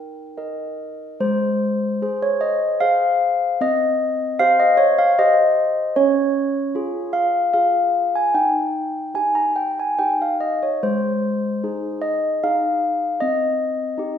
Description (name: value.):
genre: classical, tune for handbells.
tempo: 75 BPM.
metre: 3/4.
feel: uneven beats.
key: Ab major.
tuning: A4 = 440 Hz.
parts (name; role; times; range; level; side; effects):
handbells; solo; 0.0-14.2 s; Ab3 to Bb5; -18 LUFS; equal; none.
room: wet recital hall reverb, RT60 1.4 s.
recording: recorded in a church or concert hall.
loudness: -17 LUFS.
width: side -8 dB against mid.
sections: 0.0-1.2 A section; 1.2-14.2 B section.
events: none.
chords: 0.0 Eb; 1.2 Ab; 3.6 Cm; 6.0 Db; 8.3 Eb; 10.8 Ab; 13.2 Cm.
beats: 0.36 | 1.20 2.01 2.81 | 3.60 4.40 5.18 | 5.97 6.75 7.54 | 8.35 9.17 10.00 | 10.83 11.62 12.41 | 13.20 13.98.